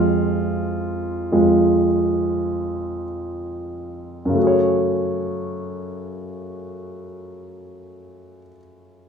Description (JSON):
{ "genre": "pop", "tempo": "free time", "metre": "none", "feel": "none", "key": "F# minor", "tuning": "A4 = 439 Hz", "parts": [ { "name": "warm grand piano", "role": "accompaniment", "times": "0.0-9.1 s", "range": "F2 to C#5", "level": "-20 LUFS", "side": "right 1 dB", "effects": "none" } ], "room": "wet large studio reverb, RT60 0.9 s", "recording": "band playing live in one room", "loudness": "-18 LUFS", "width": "side -6 dB against mid", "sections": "0.0-4.4 A section; 4.4-9.1 B section", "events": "slowing down 0.0-4.4; grand piano solo 0.0-4.4", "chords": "0.0 Fm; 4.4 F#madd9" }